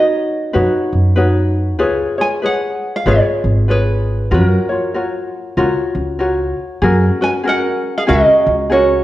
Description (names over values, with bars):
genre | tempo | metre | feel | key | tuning
Hawaiian | 95 BPM | 4/4 | swing 61% on 8ths | F# major | A4 = 439 Hz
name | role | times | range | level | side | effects
tenor ukulele | melody | 0.0-9.0 s | F#4 to G#5 | -16 LUFS | right 2 dB | none
ukulele | accompaniment | 0.0-9.0 s | C#4 to C#5 | -17 LUFS | left 2 dB | none
upright bass | bass | 0.6-9.0 s | G#1 to F#2 | -16 LUFS | right 1 dB | none
room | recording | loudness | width
moderate recital hall reverb, RT60 1.4 s | worn, warbling old tape, cassette tape, warbly pitch drift | -13 LUFS | side -15 dB against mid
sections
0.0-6.8 A section; 6.8-9.0 A section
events
none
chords
0.0 Badd9; 1.8 C#7; 4.3 F#maj7; 6.8 F#add9